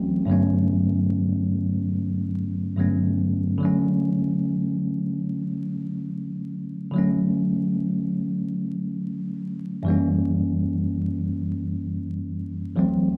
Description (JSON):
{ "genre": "R&B", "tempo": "72 BPM", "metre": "4/4", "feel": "swing 61% on 16ths", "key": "unclear", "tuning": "A4 = 440 Hz", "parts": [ { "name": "bell-like tine electric piano", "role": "solo", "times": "0.0-13.2 s", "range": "D2 to F#4", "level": "-25 LUFS", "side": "equal", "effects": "none" } ], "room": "moderate studio ambience, RT60 0.5 s", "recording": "vinyl crackle", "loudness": "-25 LUFS", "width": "mono", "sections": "0.0-13.2 A section", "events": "none", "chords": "0.3 Gmaj9#11; 3.6 Dmaj7; 9.9 F#7b9" }